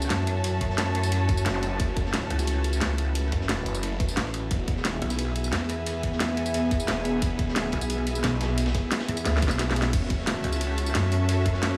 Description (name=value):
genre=dark technical drum and bass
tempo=177 BPM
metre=4/4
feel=straight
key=F# minor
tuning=A4 = 440 Hz
part: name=deep dark ambient pad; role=sustained chords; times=0.0-11.8 s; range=A3 to E5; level=-36 LUFS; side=equal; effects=chorus, built-in reverb, sidechain pumping
part: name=pulsing pluck wobble bass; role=bass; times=0.0-11.8 s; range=A1 to F#2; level=-29 LUFS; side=equal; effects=chorus, tube saturation
part: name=crunchy breakbeat drum kit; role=drums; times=0.0-11.7 s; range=ride cymbal, snare drum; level=-41 LUFS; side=equal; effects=high-pass filter on cymbals, high-pass filter on snare, high-pass filter on room
part: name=drum and bass drum kit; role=drums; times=0.0-11.7 s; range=crash cymbal, hi-hat, ride cymbal, snare drum, tambourine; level=-32 LUFS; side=equal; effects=overdrive
part: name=clear studio string section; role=texture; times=0.0-11.8 s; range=B3 to A5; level=-35 LUFS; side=equal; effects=sidechain pumping
part: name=electronic kick drum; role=drums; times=0.6-11.5 s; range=none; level=-30 LUFS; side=equal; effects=none
part: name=snarling distorted saw bass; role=bass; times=1.5-10.4 s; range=E1 to B1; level=-32 LUFS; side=equal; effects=distortion, tube saturation, sidechain pumping
part: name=zap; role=sound effects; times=1.5-1.6 s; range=none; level=-41 LUFS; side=equal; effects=none
room=light reverb, digital ambience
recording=studio ambience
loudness=-26 LUFS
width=mono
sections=0.0-11.8 A section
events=drum fill 9.3-9.9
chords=0.0 F#m7; 4.5 E; 9.9 F#m7